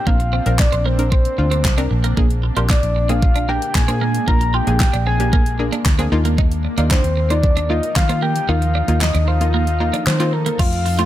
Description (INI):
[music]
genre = dance-pop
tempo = 114 BPM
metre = 4/4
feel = straight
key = unclear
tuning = A4 = 440 Hz
[part]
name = soft octave-layered synth lead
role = melody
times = 0.0-11.1 s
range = Bb4 to Bb5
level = -23 LUFS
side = left 2 dB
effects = chorus, tape echo
[part]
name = granular cloud pad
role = sustained chords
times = 0.0-11.1 s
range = F3 to A4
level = -28 LUFS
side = equal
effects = built-in reverb, sidechain pumping
[part]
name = analog pluck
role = accompaniment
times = 0.1-11.1 s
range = A3 to C5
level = -25 LUFS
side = left 2 dB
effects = chorus, sidechain pumping
[part]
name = twelve-string electric guitar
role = riff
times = 0.1-11.1 s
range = Bb3 to F4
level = -26 LUFS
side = right 7 dB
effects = lush chorus
[part]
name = vintage muted fingered electric bass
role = bass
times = 0.1-11.1 s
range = Bb1 to Eb3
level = -19 LUFS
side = equal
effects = sidechain pumping
[part]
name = pop drum kit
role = drums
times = 0.1-11.1 s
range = crash cymbal, handclaps, hi-hat, kick drum, snare drum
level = -17 LUFS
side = equal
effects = overdrive
[sound]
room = digital ambience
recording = none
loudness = -15 LUFS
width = side -13 dB against mid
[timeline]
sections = 0.0-10.6 A section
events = kick muted 8.5-10.6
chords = 0.0 Bbadd9; 2.2 Bb7; 6.1 Ebsus2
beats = | 0.07 0.59 1.12 1.65 | 2.17 2.70 3.23 3.75 | 4.28 4.80 5.33 5.86 | 6.38 6.91 7.44 7.96 | 8.49 9.02 9.54 10.07 | 10.59